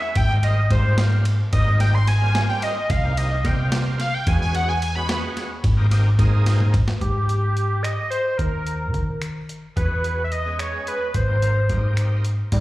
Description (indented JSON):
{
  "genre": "progressive instrumental, band music in an uneven meter",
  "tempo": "218 BPM (eighths)",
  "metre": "5/8",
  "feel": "straight",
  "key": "Ab major",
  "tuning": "A4 = 439 Hz",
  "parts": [
    { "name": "lead with added fifth", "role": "melody", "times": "0.0-12.6 s", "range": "G3 to C6", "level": "-25 LUFS", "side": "equal", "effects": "chorus, phaser, slapback echo" },
    { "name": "bright tonewheel organ", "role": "accompaniment", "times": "0.0-6.7, 9.8-12.6 s", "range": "G3 to Bb4", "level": "-32 LUFS", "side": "right 1 dB", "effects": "chorus vibrato, slow rotary speaker, slapback echo" },
    { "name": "hollow-body short-scale picked electric bass", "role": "bass", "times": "0.2-12.6 s", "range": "Ab1 to Eb3", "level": "-20 LUFS", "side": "equal", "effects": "none" },
    { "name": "boom bap sampler-style drum kit", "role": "drums", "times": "0.2-12.6 s", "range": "crash cymbal, finger snaps, hi-hat, kick drum, ride cymbal, snare drum, toms", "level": "-25 LUFS", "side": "equal", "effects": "overdrive" }
  ],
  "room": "light reverb",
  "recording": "live gig heard through the venue's PA, club reverb",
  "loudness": "-18 LUFS",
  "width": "side -17 dB against mid",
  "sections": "0.0-7.0 A section; 7.0-12.5 B section",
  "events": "analog synth lead solo 0.0-7.0; drum fill 6.5-7.0",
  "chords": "0.2 Abmaj7; 2.9 Cm7; 4.3 E6; 5.6 Abmaj7; 8.4 Eb5; 9.8 E6; 11.1 Abmaj7",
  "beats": "| 0.16 0.43 0.70 0.98 1.25 | 1.53 1.80 2.08 2.35 2.62 | 2.90 3.17 3.44 3.72 3.99 | 4.27 4.54 4.82 5.09 5.37 | 5.64 5.91 6.19 6.46 6.74 | 7.01 7.29 7.56 7.84 8.11 | 8.39 8.66 8.94 9.22 9.49 | 9.77 10.04 10.32 10.59 10.87 | 11.14 11.42 11.70 11.97 12.25 | 12.52"
}